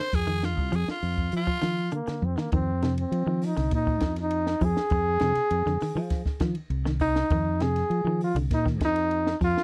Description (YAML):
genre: afrobeat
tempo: 100 BPM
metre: 4/4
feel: straight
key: F dorian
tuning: A4 = 440 Hz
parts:
  - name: growling tenor saxophone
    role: melody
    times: 0.0-1.9 s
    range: F4 to C5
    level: -33 LUFS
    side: equal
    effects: none
  - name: fingered electric bass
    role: bass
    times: 0.1-9.5 s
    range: C2 to F3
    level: -30 LUFS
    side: equal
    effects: none
  - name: compact cocktail drum kit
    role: drums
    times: 0.1-9.6 s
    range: hi-hat, kick drum, ride cymbal, snare drum, toms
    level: -32 LUFS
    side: equal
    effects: none
  - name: clean electric guitar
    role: arpeggios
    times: 0.3-9.6 s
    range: C3 to F3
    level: -33 LUFS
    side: equal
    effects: none
  - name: clear trombone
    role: melody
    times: 1.9-9.6 s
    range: Bb3 to Ab4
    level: -29 LUFS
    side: equal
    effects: none
room: light reverb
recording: dry, close 1970s-style studio recording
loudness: -26 LUFS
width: mono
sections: 0.0-2.5 A section; 2.5-9.6 B section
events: tenor saxophone solo 0.0-2.5; drum fill 2.2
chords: 0.0 F7(no3); 2.5 Fm7